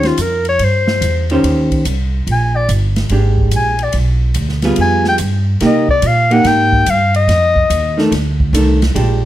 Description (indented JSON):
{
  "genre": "jazz, small-group swing and bop",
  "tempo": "144 BPM",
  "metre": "4/4",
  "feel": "swing 66% on 8ths",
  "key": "unclear",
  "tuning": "A4 = 439 Hz",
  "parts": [
    { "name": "bright clarinet", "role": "melody", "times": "0.0-8.1 s", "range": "F4 to Ab5", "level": "-15 LUFS", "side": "left 2 dB", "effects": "none" },
    { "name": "vintage hollow-body jazz guitar", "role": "accompaniment", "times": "0.0-9.2 s", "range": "Eb3 to C5", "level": "-15 LUFS", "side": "right 1 dB", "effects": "none" },
    { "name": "upright bass", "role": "bass", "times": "0.0-9.3 s", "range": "G1 to C3", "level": "-15 LUFS", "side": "right 1 dB", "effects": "none" },
    { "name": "swinging big-band drum kit", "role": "drums", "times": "0.0-9.1 s", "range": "hi-hat, kick drum, ride cymbal, snare drum", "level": "-22 LUFS", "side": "equal", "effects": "none" }
  ],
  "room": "light reverb",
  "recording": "none",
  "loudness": "-11 LUFS",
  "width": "side -13 dB against mid",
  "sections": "0.0-9.3 A section",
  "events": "clarinet solo 0.0-9.3",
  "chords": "0.0 Eb13; 2.3 Bb6; 3.9 G7b9; 5.6 Cm7; 7.3 F6"
}